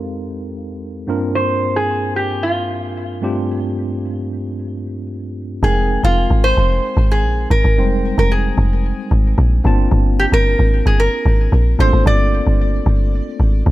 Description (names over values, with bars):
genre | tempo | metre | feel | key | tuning
amapiano | 112 BPM | 4/4 | straight | F dorian | A4 = 440 Hz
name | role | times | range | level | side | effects
tine electric piano | accompaniment | 0.0-13.7 s | F2 to A5 | -22 LUFS | equal | medium stereo tremolo, low-pass filter
metal-body resonator slide guitar | melody | 1.4-13.6 s | F4 to D5 | -20 LUFS | equal | low-pass filter, ping-pong delay
deep log drum bass | bass | 5.6-13.7 s | F1 to Bb1 | -14 LUFS | equal | none
room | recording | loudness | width
small room ambience | none | -14 LUFS | side -16 dB against mid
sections
0.0-5.6 A section; 5.6-13.7 B section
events
filter sweep 0.0-5.6; drop 5.6-13.7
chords
0.0 Fm11; 1.1 Gm11; 5.6 Fm11; 9.6 Gm11